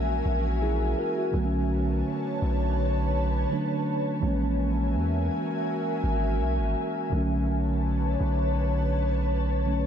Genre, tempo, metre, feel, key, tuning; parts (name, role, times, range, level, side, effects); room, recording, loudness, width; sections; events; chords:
R&B; 83 BPM; 4/4; swing 54% on 16ths; B dorian; A4 = 441 Hz
mellow tine electric piano; accompaniment; 0.0-9.9 s; D3 to A#4; -29 LUFS; right 2 dB; medium stereo tremolo
ethereal airy pad; sustained chords; 0.0-9.9 s; D3 to A5; -30 LUFS; left 1 dB; ensemble chorus, built-in reverb
long sustained 808-style bass; bass; 0.0-9.9 s; G#1 to E2; -26 LUFS; equal
light reverb; -24 LUFS; side -8 dB against mid
0.0-9.9 A section
0.0 F#9/A#; 1.3 Bm9; 4.2 F#9/A#; 7.1 Bm9